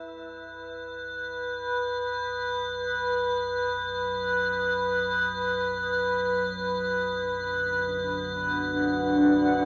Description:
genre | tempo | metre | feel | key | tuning
dark ambient drone | free time | none | none | B minor | A4 = 438 Hz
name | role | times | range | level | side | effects
deep rumbling drone | drone | 0.3-9.7 s | B1 to F#2 | -41 LUFS | equal | built-in reverb, phaser, lush chorus
metallic inharmonic drone | texture | 0.2-9.7 s | B4 | -26 LUFS | equal | chorus, built-in reverb, shimmer reverb
deep dark ambient pad | sustained chords | 8.2-9.7 s | D4 to F#5 | -24 LUFS | equal | chorus, built-in reverb, shimmer reverb
room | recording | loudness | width
wet spring reverb, RT60 2.6 s | echo-heavy mix, cassette tape, small speaker sound | -24 LUFS | side -30 dB against mid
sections
0.0-9.7 A section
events
none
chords
0.0 Bm

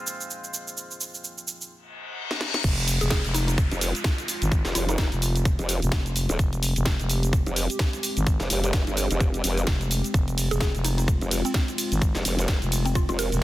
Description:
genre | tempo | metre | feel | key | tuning
bass house | 128 BPM | 4/4 | swing 58% on 16ths | F minor | A4 = 440 Hz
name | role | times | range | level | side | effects
dark analog pad | sustained chords | 0.0-13.4 s | F3 to G4 | -35 LUFS | left 1 dB | chorus, sidechain pumping
bright baby grand piano | stabs | 0.0-1.7 s | Ab3 to C5 | -38 LUFS | equal | sidechain pumping, dub echo
garage drum kit | drums | 0.1-13.4 s | cabasa, crash cymbal, hi-hat, ride cymbal, snare drum | -29 LUFS | right 1 dB | studio reverb
reverse cymbal and downlifter | sound effects | 1.9-6.4 s | none | -32 LUFS | left 3 dB | none
growling FM bass | bass | 2.6-13.4 s | F1 to Ab1 | -25 LUFS | equal | overdrive, sidechain pumping
electronic kick drum | drums | 2.6-13.1 s | none | -23 LUFS | equal | studio reverb
mallet-like synth pluck | melody | 3.0-5.1, 10.5-13.4 s | C4 to Bb4 | -32 LUFS | right 1 dB | chorus, phaser, dub echo
formant-sweep wobble bass | bass | 3.7-13.3 s | Eb1 to G1 | -26 LUFS | equal | chorus, overdrive, sidechain pumping
room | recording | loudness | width
little or no reverb | dense, heavily limited modern master | -22 LUFS | side -16 dB against mid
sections
0.0-2.6 A section; 2.6-13.4 B section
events
filter sweep on grand piano 0.0-2.6; reverse cymbal 1.9-2.6; drum fill 2.3-2.6; drop 2.6-13.4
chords
0.0 Fm

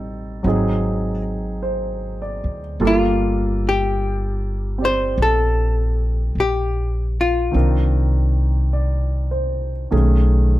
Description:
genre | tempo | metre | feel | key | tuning
jazz ballad | 51 BPM | 4/4 | swing 69% on 8ths | unclear | A4 = 440 Hz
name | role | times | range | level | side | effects
archtop guitar, miked and amplified | melody | 0.0-10.6 s | Eb4 to C5 | -21 LUFS | left 2 dB | none
warm baby grand piano | accompaniment | 0.0-10.6 s | Eb3 to D5 | -23 LUFS | right 2 dB | none
upright bass | bass | 0.0-10.6 s | G1 to D2 | -20 LUFS | equal | none
room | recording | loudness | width
little or no reverb | none | -17 LUFS | side -16 dB against mid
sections
0.0-10.6 A section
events
none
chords
0.4 G#7#11; 2.8 Gm9; 7.5 Cm9; 9.9 B13

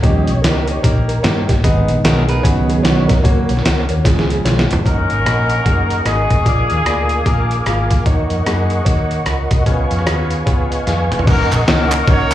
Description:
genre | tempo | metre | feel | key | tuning
uptempo gospel | 150 BPM | 4/4 | swing 61% on 8ths | F# major | A4 = 440 Hz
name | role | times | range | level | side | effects
clear concert grand piano | accompaniment | 0.0-12.3 s | G#2 to G#5 | -22 LUFS | left 2 dB | slapback echo
mellow tonewheel organ | sustained chords | 0.0-12.3 s | C#3 to D6 | -21 LUFS | right 2 dB | slow rotary speaker, chorus vibrato
hollow-body short-scale fingered electric bass | bass | 0.0-12.3 s | E#1 to G2 | -18 LUFS | equal | none
trip hop sampler-style drum kit | drums | 0.0-12.3 s | crash cymbal, hi-hat, kick drum, ride cymbal, rim click, snare drum, toms | -17 LUFS | equal | none
clean electric guitar | second line | 2.0-3.1 s | G#4 to C#5 | -28 LUFS | right 4 dB | slapback echo
warm horn section | melody | 4.8-7.9, 11.3-12.3 s | C#4 to C#5 | -19 LUFS | left 2 dB | slapback echo
group handclap | percussion | 11.5-12.3 s | none | -22 LUFS | right 2 dB | none
room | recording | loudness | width
light reverb | live gig heard through the venue's PA, club reverb | -13 LUFS | side -13 dB against mid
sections
0.0-4.8 A section; 4.8-11.3 B section; 11.3-12.3 C section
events
tonewheel organ solo 0.0-4.8; drum fill 4.0-4.8, 10.9-11.3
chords
0.0 D#7; 1.6 G#m; 2.4 C#9sus4; 3.2 F#; 4.0 C#; 4.8 F#6; 6.5 A#7; 8.1 D#m7; 9.7 C#7; 11.3 F#6

